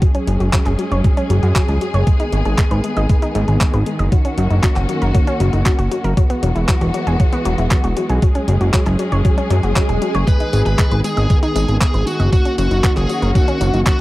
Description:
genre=italo disco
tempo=117 BPM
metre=4/4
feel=straight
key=G# minor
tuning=A4 = 441 Hz
part: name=warm studio string section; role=sustained chords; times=0.0-14.0 s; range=D#3 to G#4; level=-22 LUFS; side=equal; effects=none
part: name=analog pluck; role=arpeggios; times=0.0-14.0 s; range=F#3 to D#5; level=-24 LUFS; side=left 2 dB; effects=chorus, tape echo
part: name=clean 12-bit digital drum machine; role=drums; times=0.0-14.0 s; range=handclaps, hi-hat, tambourine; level=-25 LUFS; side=equal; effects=none
part: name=electronic kick drum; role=drums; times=0.0-14.0 s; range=none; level=-15 LUFS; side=equal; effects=none
part: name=fat analog bass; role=bass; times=0.3-13.8 s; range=E1 to F#2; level=-16 LUFS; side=equal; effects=tube saturation
part: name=swell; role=sound effects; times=9.5-10.3 s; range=none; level=-26 LUFS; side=right 1 dB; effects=none
part: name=dark smooth lead guitar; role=melody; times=10.3-14.0 s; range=F#4 to B4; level=-22 LUFS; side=equal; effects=overdrive, tape echo
room=little or no reverb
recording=dry, close 1970s-style studio recording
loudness=-14 LUFS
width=side -18 dB against mid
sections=0.0-14.0 A section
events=swell 9.5-10.3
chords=0.0 F#sus2; 2.1 G#m; 4.1 D#m7/F#; 6.2 Eadd9; 8.2 F#sus2; 10.3 G#m; 12.3 D#m7/F#

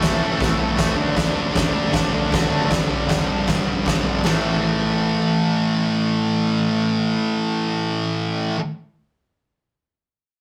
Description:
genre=garage rock duo or trio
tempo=156 BPM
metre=4/4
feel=straight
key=A mixolydian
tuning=A4 = 440 Hz
part: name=combo organ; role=sustained chords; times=0.0-0.9 s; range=E4 to C#5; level=-31 LUFS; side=equal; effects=none
part: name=thick fuzz guitar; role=riff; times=0.0-8.6 s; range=G2 to D4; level=-22 LUFS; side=equal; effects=distortion
part: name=oversized low-tuned drum kit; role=drums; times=0.0-4.3 s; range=kick drum, snare drum, splash cymbal, toms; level=-24 LUFS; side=equal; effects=none
part: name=tambourine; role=percussion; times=0.0-0.9 s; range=none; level=-41 LUFS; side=equal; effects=none
room=moderate studio reverb, RT60 0.5 s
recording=rough rehearsal-room recording, tube saturation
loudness=-20 LUFS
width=mono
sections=0.0-4.2 A section; 4.2-7.3 B section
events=none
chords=0.0 A; 1.0 D5; 2.7 G5; 4.2 A5

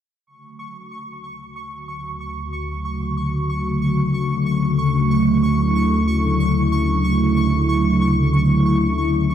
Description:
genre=ambient, sequencer-driven space music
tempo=free time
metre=none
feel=none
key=unclear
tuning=A4 = 439 Hz
part: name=phased analog pad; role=sustained chords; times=0.3-9.3 s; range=C#3 to F#4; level=-18 LUFS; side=equal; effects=phaser, chorus
part: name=analog drone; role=bass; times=2.1-9.3 s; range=D2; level=-25 LUFS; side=left 1 dB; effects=chorus
part: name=pulsing gated texture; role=texture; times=0.6-9.3 s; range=C#6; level=-27 LUFS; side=left 1 dB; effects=chorus, built-in reverb
room=moderate huge ambient reverb, RT60 8.8 s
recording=none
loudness=-16 LUFS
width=side -9 dB against mid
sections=0.3-9.3 A section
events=fade-in on synth drone 0.3-9.3; filter sweep on analog synth pad 0.3-9.3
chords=0.3 Dmaj7

